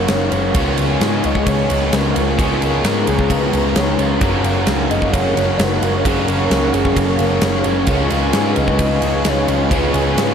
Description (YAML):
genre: rock, shoegaze and dream pop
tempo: 131 BPM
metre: 4/4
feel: straight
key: F# major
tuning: A4 = 440 Hz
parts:
  - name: soft octave-layered synth lead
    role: melody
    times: 0.0-10.3 s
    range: G#4 to D#5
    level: -23 LUFS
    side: equal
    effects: chorus, tremolo, analog delay
  - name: airy breathy pad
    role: sustained chords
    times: 0.0-10.3 s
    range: B3 to C#6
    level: -24 LUFS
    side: equal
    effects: chorus
  - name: crunchy overdriven guitar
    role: riff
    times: 0.0-10.3 s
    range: F#2 to C#4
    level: -22 LUFS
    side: equal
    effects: lush chorus
  - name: raw garage guitar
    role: riff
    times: 0.0-10.3 s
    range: F#2 to F#4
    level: -23 LUFS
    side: right 6 dB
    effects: overdrive, reverse reverb
  - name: thick fuzz guitar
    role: riff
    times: 0.0-10.3 s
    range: F#2 to C#4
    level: -24 LUFS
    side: left 7 dB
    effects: distortion, wide subtle chorus
  - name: vintage muted picked electric bass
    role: bass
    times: 0.0-10.3 s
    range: F#1 to G#2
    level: -22 LUFS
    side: equal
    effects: none
  - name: huge arena drum kit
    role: drums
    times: 0.1-10.3 s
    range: kick drum, ride cymbal, snare drum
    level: -20 LUFS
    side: equal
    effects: none
room: wet huge ambient reverb, RT60 9.6 s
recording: dreamy mix soaked in reverb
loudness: -14 LUFS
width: side -7 dB against mid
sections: 0.0-10.3 A section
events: none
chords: 0.0 F#maj7; 0.5 C#7; 4.2 F#maj7; 7.9 C#7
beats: 0.09 | 0.55 1.01 1.47 1.92 | 2.38 2.84 3.30 3.76 | 4.21 4.67 5.13 5.59 | 6.05 6.50 6.96 7.42 | 7.88 8.34 8.79 9.25 | 9.71 10.17